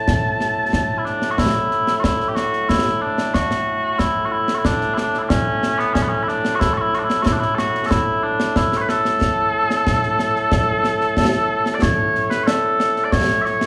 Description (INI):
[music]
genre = scottish traditional, Scottish pipe music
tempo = 92 BPM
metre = 4/4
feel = straight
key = A major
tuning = A4 = 440 Hz
[part]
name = mellow small bagpipes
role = melody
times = 0.0-13.7 s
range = A2 to A5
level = -21 LUFS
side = equal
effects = none
[part]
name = concert snare drum and concert bass drum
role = drums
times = 0.1-13.7 s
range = none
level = -24 LUFS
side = equal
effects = none
[sound]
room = wet recital hall reverb, RT60 1.3 s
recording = recorded in a church or concert hall, studio reverb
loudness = -19 LUFS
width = mono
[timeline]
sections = 0.0-1.4 A section; 1.4-11.8 A section; 11.8-13.7 B section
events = none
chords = none